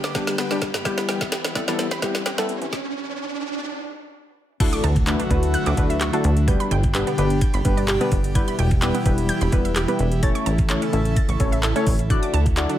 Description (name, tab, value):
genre	dance-pop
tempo	128 BPM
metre	4/4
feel	straight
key	D major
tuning	A4 = 440 Hz
part	airy breathy pad	sustained chords	0.0-12.8 s	B2 to B4	-28 LUFS	equal	chorus, sidechain pumping
part	wide unison pluck	arpeggios	0.0-12.8 s	G2 to A6	-30 LUFS	right 3 dB	auto-pan, sidechain pumping, tape echo
part	smooth R&B drum kit	drums	0.0-12.8 s	crash cymbal, handclaps, hi-hat, kick drum, snare drum	-23 LUFS	equal	none
part	riser and impact	sound effects	0.1-6.5 s	none	-32 LUFS	right 2 dB	none
part	warm analog keys	accompaniment	0.1-12.7 s	G3 to E5	-25 LUFS	left 2 dB	chorus, sidechain pumping
part	plucky analog bass	bass	4.8-12.7 s	E1 to D2	-22 LUFS	equal	sidechain pumping
room	digital ambience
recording	high-pass filter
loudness	-19 LUFS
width	side -12 dB against mid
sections	0.0-4.6 A section; 4.6-12.8 B section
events	build-up 0.0-4.6; drum fill 0.0-2.7; riser 0.1-4.6; stop 2.7-4.6; drop 4.6-12.8; impact 4.6-6.5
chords	0.0 G; 0.9 Em; 2.7 N.C.; 4.6 Dadd9; 6.5 G; 8.4 Em; 10.2 A; 12.1 Dadd9